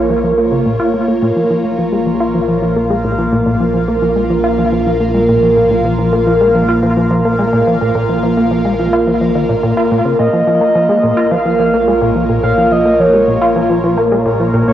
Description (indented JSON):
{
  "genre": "ambient, sequencer-driven space music",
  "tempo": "107 BPM",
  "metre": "4/4",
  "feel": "straight",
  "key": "Bb minor",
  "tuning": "A4 = 437 Hz",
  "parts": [
    { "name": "phased analog pad", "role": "sustained chords", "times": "0.0-14.7 s", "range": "Bb3 to F5", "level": "-13 LUFS", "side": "equal", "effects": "phaser, chorus, cassette tape, shimmer reverb" },
    { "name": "plucky analog bass", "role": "riff", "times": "0.0-14.7 s", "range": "Bb2 to F4", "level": "-16 LUFS", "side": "equal", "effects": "lush chorus, cassette tape, tape echo" },
    { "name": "analog drone", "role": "bass", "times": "0.0-14.7 s", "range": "Bb1", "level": "-22 LUFS", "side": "equal", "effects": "chorus" },
    { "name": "pulse-width lead", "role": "melody", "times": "10.2-14.7 s", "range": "Db5 to F5", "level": "-15 LUFS", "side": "equal", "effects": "chorus, cassette tape, shimmer reverb, tape echo" }
  ],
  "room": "wet spring reverb, RT60 2.4 s",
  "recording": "home recording on cassette",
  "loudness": "-11 LUFS",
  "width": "side -11 dB against mid",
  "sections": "0.0-14.7 A section",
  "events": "filter sweep on analog synth bass 0.0-14.7",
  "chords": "0.0 Bbm"
}